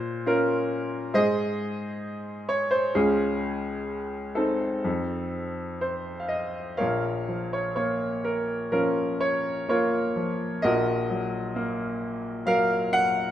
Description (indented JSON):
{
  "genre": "classical, lyrical solo piano",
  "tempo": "61-69 BPM",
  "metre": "4/4",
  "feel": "rubato",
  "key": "Bb minor from 6.8 s",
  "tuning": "A4 = 440 Hz",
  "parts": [
    { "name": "bright upright piano", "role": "solo", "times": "0.0-13.3 s", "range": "Bb1 to Gb5", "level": "-24 LUFS", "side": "equal", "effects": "none" }
  ],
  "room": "moderate recital hall reverb, RT60 1.4 s",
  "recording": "minimal, uncompressed stereo recording",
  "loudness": "-24 LUFS",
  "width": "side -11 dB against mid",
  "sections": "0.0-6.8 A section; 6.8-13.3 B section",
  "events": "none",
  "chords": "0.0 Bbm; 1.1 Ab; 3.0 Db; 4.8 F7; 6.8 Bbm; 10.6 Ebm/Bb"
}